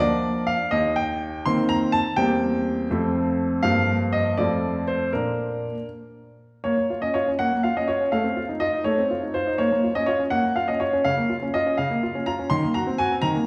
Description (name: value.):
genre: classical-period piano sonatina.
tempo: 82 BPM (dotted quarters).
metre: 6/8.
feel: straight.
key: Bb major, Bb minor from 6.6 s.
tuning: A4 = 440 Hz.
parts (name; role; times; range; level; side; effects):
clear baby grand piano; solo; 0.0-13.5 s; Eb2 to C6; -23 LUFS; equal; none.
room: wet recital hall reverb, RT60 1.7 s.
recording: heard from further back in the room.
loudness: -23 LUFS.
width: mono.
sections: 0.0-6.6 A section; 6.6-13.5 B section.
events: none.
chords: 0.0 Bb; 0.7 Cm7/Eb; 2.2 C7/E; 2.9 F; 3.6 Gm7; 4.4 F; 5.1 Bb; 6.6 Bbm; 8.1 F7/A; 9.6 Bbm; 11.0 Bbm/Db; 12.5 Cm7b5/Eb.